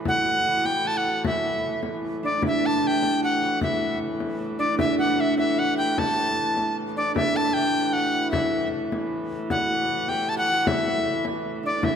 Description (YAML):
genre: medieval dance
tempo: 153 BPM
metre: 3/4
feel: straight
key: unclear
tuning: A4 = 439 Hz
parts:
  - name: concert harp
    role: second line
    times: 0.0-12.0 s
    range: D4 to A4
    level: -28 LUFS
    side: right 2 dB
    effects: slapback echo
  - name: dark hurdy-gurdy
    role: drone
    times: 0.0-12.0 s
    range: A2 to E3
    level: -30 LUFS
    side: equal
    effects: none
  - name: bright reedy soprano recorder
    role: melody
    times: 0.1-12.0 s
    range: D5 to A5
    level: -24 LUFS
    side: equal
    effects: none
  - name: frame drum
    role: percussion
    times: 0.1-12.0 s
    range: none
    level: -31 LUFS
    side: left 3 dB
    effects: none
room: wet concert hall reverb, RT60 2.3 s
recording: none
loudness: -21 LUFS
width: side -7 dB against mid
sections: 0.0-7.2 A section; 7.2-12.0 A section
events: none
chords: none